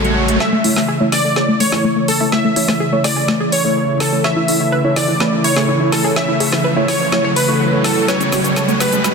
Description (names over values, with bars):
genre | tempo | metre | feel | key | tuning
progressive house | 125 BPM | 4/4 | straight | A major | A4 = 442 Hz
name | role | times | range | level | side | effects
plucky unison lead | melody | 0.0-9.1 s | A4 to E5 | -19 LUFS | equal | digital delay
warm analog pad | sustained chords | 0.0-9.1 s | C#3 to F#4 | -20 LUFS | left 1 dB | chorus
analog pluck | arpeggios | 0.0-9.1 s | A3 to C#5 | -21 LUFS | left 2 dB | chorus, ping-pong delay
chorused polysynth | stabs | 0.0-8.7 s | A3 to C#5 | -20 LUFS | right 2 dB | ping-pong delay
deep house drum kit | drums | 0.0-9.1 s | hi-hat, rim click, shaker, snare drum | -21 LUFS | equal | high-pass filter on hats, high-pass filter on snare, high-pass filter on perc
riser | sound effects | 0.0-9.1 s | none | -23 LUFS | right 1 dB | none
room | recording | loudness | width
moderate lush hall reverb, RT60 2.1 s | dense, heavily limited modern master | -13 LUFS | side -5 dB against mid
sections
0.4-9.1 A section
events
riser 0.0-0.4, 0.4-9.1; build-up 0.4-9.1; drum fill 0.4-9.1; filter sweep on synth pluck 0.4-9.1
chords
0.4 A; 8.1 F#m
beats
| 0.40 0.88 1.36 1.84 | 2.32 2.80 3.28 3.76 | 4.24 4.72 5.20 5.68 | 6.16 6.64 7.12 7.60 | 8.08 8.56 9.04